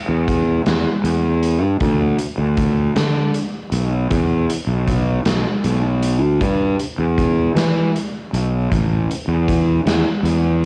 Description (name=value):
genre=quiet-loud alternative rock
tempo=52 BPM (dotted quarters)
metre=6/8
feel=straight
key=unclear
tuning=A4 = 440 Hz
part: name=fuzz fingered electric bass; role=bass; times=0.1-10.7 s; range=A1 to E3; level=-19 LUFS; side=equal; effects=overdrive
part: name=raw garage drum kit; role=drums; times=0.3-10.4 s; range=hi-hat, kick drum, snare drum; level=-25 LUFS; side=equal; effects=none
room=little or no reverb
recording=home recording on cassette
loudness=-18 LUFS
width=mono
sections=0.0-10.7 A section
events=none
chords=none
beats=0.66 | 1.81 2.96 | 4.11 5.26 | 6.41 7.56 | 8.71 9.87